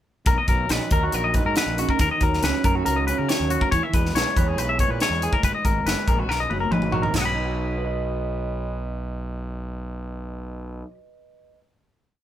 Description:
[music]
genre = math rock and midwest emo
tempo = 140 BPM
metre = 4/4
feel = straight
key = B major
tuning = A4 = 439 Hz
[part]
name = electric guitar through a small old amp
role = accompaniment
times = 0.3-11.6 s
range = G#2 to D#5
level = -29 LUFS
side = right 5 dB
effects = none
[part]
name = twangy electric guitar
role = arpeggios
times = 0.3-10.9 s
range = F#4 to B5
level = -25 LUFS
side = left 4 dB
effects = none
[part]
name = fuzz fingered electric bass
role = bass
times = 0.3-10.8 s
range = F#1 to C#3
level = -28 LUFS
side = equal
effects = overdrive
[part]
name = crisp fusion drum kit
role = drums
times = 0.3-7.2 s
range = crash cymbal, hi-hat, kick drum, snare drum, toms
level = -23 LUFS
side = equal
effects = none
[sound]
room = light reverb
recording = band playing live in one room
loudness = -20 LUFS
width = side -11 dB against mid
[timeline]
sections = 0.3-7.1 A section; 7.1-10.5 final chord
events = drum fill 6.3-7.1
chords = 0.3 Bmaj7; 2.0 D#m7; 3.7 C#m7; 5.4 G#m7; 7.1 B

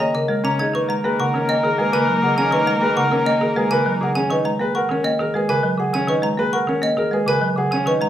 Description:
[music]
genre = classical, minimalist pattern music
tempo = 101 BPM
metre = 3/4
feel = straight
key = B major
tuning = A4 = 440 Hz
[part]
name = marimba with soft mallets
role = melody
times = 0.0-8.1 s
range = G#4 to A#5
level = -23 LUFS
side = left 1 dB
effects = none
[part]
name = folk marimba with hard mallets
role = accompaniment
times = 0.0-8.1 s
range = C#3 to A#3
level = -23 LUFS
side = equal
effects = none
[part]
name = clear baby grand piano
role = arpeggios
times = 0.0-8.1 s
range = C#4 to D#5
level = -23 LUFS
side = right 1 dB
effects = none
[part]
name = xylophone with wooden mallets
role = arpeggios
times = 0.0-8.1 s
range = D#5 to G#6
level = -25 LUFS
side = right 1 dB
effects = none
[part]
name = bright oboe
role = second line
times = 0.7-4.1 s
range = A#4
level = -22 LUFS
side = equal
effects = none
[part]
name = clear symphonic string section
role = sustained chords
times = 0.7-4.1 s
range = A#3 to D#4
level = -26 LUFS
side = left 3 dB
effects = none
[sound]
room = moderate large studio reverb, RT60 0.8 s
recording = small room ambience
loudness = -17 LUFS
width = side -11 dB against mid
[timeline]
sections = 0.7-8.1 A section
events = none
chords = 0.0 G#sus2; 0.7 Bmaj9

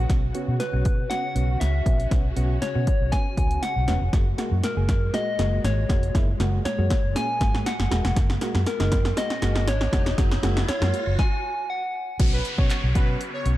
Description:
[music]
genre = dance-pop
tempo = 119 BPM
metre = 4/4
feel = straight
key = unclear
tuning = A4 = 440 Hz
[part]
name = soft struck synth lead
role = melody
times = 0.0-12.2 s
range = A#4 to G#5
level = -29 LUFS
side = left 1 dB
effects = chorus, digital delay
[part]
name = string machine, violas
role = sustained chords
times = 0.0-13.6 s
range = A#2 to F#4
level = -36 LUFS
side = equal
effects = ensemble chorus, sidechain pumping
[part]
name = vintage muted fingered electric bass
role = bass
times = 0.0-13.6 s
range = E1 to B2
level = -24 LUFS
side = equal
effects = sidechain pumping
[part]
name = soft electric-piano-like synth keys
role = accompaniment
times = 0.1-13.5 s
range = F#3 to G#4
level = -33 LUFS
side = right 2 dB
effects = chorus, sidechain pumping
[part]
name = punchy analog drum machine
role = drums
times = 0.1-13.6 s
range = crash cymbal, handclaps, hi-hat, kick drum, snare drum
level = -24 LUFS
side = equal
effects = none
[part]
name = riser and downlifter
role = sound effects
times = 6.4-13.6 s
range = none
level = -35 LUFS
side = left 1 dB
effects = none
[part]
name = soft supersaw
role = melody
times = 12.3-13.4 s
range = B4 to C#5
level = -32 LUFS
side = equal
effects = none
[sound]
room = digital ambience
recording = dark, warm production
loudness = -21 LUFS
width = side -15 dB against mid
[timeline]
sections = 0.0-12.2 A section; 12.2-13.6 B section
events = build-up 0.0-12.2; drum fill 0.0-11.2; riser 6.4-12.2; stop 11.2-12.2; drop 12.2-13.6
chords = 0.0 Bsus2; 4.1 F#add9; 12.2 Bsus2

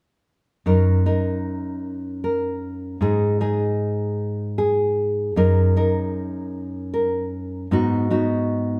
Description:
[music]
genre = folk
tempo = 51 BPM (dotted quarters)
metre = 6/8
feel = straight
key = F# major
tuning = A4 = 439 Hz
[part]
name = nylon-string guitar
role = accompaniment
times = 0.7-8.8 s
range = F#2 to A#4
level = -22 LUFS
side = equal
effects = none
[sound]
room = moderate large studio reverb, RT60 1.2 s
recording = band playing live in one room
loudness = -22 LUFS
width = mono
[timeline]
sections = 0.6-8.8 A section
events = none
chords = 0.6 F#6; 3.0 G#5; 5.4 F#6; 7.7 G#m7

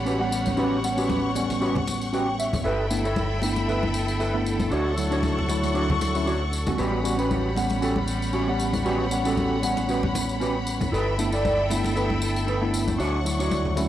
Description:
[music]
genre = nu-disco, nu disco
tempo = 116 BPM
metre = 4/4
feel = swing 54% on 16ths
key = A mixolydian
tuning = A4 = 440 Hz
[part]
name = tine electric piano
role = accompaniment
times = 0.0-13.9 s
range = F#3 to F#5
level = -28 LUFS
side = equal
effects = overdrive, medium stereo tremolo, tape echo
[part]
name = bright studio string section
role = sustained chords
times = 0.0-13.9 s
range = G3 to C#6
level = -30 LUFS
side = left 2 dB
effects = none
[part]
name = picked electric bass with an envelope filter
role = bass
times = 0.0-13.9 s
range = G1 to D2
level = -28 LUFS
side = equal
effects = none
[part]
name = mellow electric guitar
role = riff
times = 0.1-13.7 s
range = C#4 to G5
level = -28 LUFS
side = right 2 dB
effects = analog chorus, low-pass filter, tape echo
[part]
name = tambourine and congas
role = percussion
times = 0.1-13.9 s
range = none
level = -31 LUFS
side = left 2 dB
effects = none
[sound]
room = light reverb, digital ambience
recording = dry, gritty hardware recording, cassette tape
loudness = -22 LUFS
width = side -12 dB against mid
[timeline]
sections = 0.0-13.9 A section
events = clean electric guitar fill 1.9-2.6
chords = 0.0 A13; 2.6 G69; 4.7 Dmaj7; 6.8 A13; 10.9 G69; 13.0 Dmaj7

